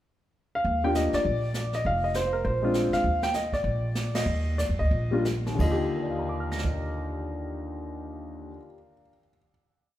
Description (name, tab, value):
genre	jazz piano trio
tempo	171-201 BPM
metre	4/4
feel	swing 62% on 8ths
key	Eb major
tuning	A4 = 438 Hz
part	warm grand piano	melody	0.6-9.5 s	Eb2 to Bb6	-28 LUFS	left 1 dB	none
part	upright bass	bass	0.6-8.6 s	F1 to F2	-29 LUFS	equal	none
part	jazz brush drum kit	drums	0.6-6.7 s	brushed snare drum, crash cymbal, hi-hat, kick drum, ride cymbal, snare drum	-35 LUFS	right 2 dB	none
room	moderate recital hall reverb, RT60 1.7 s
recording	recorded in a church or concert hall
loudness	-25 LUFS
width	side -13 dB against mid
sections	0.0-0.7 pickup bar; 0.7-5.6 A section; 5.6-8.4 final chord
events	slowing down 3.0-5.6; band accent 4.1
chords	0.0 N.C.; 0.7 Ebmaj9; 1.8 F5; 2.4 Bb9; 3.0 Ebmaj7(no3); 5.6 Ebmaj9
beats	0.05 0.35 | 0.65 0.95 1.25 1.55 | 1.85 2.15 2.44 2.74 | 3.04 3.34 3.65 3.95 | 4.27 4.58 4.91 5.25 | 5.59 5.94 6.29 6.64 | 7.00 7.34 7.70 8.04